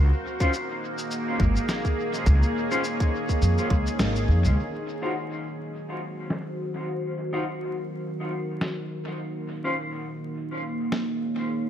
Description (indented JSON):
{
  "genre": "ambient dub",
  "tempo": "104 BPM",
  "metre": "4/4",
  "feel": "swing 56% on 16ths",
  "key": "Eb dorian",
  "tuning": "A4 = 440 Hz",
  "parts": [
    { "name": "deep dark ambient pad", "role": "sustained chords", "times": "0.0-11.7 s", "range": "Bb3 to F5", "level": "-29 LUFS", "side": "right 1 dB", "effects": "chorus, built-in reverb" },
    { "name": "upright bass", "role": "bass", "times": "0.0-4.6 s", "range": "Ab1 to F2", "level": "-21 LUFS", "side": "equal", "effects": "none" },
    { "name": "mellow electric guitar", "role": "stabs", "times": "0.4-9.7 s", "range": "Db4 to C5", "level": "-32 LUFS", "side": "left 1 dB", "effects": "analog chorus, dub echo" },
    { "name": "electronic kick drum", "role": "drums", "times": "0.4-3.8 s", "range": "none", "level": "-24 LUFS", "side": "equal", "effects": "none" },
    { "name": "electronic shaker and snare drum", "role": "drums", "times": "0.4-11.1 s", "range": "none", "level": "-32 LUFS", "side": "equal", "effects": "low-pass filter on perc, low-pass filter on snare, dub echo" }
  ],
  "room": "light reverb",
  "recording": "vinyl crackle",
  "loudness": "-24 LUFS",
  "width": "side -10 dB against mid",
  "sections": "0.0-4.6 A section; 4.6-11.7 B section",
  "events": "band accent 4.0; filter sweep on drum 4.6-11.7; filter sweep on ambient pad 4.6-11.7",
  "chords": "0.0 Db; 4.6 Ebm69; 9.2 Db",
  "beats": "0.54 1.11 1.69 | 2.27 2.84 3.42 4.00 | 4.58 5.15 5.73 6.30 | 6.88 7.46 8.04 8.61 | 9.19 9.77 10.34 10.92 | 11.50"
}